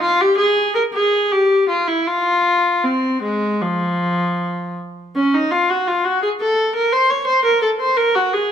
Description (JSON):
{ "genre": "classical, baroque-style suite movement for unaccompanied viola", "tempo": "77-86 BPM", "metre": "4/4", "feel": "rubato", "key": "F minor, Bb minor from 5.1 s", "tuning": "A4 = 440 Hz", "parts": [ { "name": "rich viola", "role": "solo", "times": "0.0-8.5 s", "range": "F3 to Db5", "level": "-15 LUFS", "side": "equal", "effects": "none" } ], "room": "moderate recital hall reverb, RT60 1.5 s", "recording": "close, detailed microphones", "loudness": "-15 LUFS", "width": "side -8 dB against mid", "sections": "0.0-5.1 A section; 5.1-8.5 A section", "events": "none", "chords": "none" }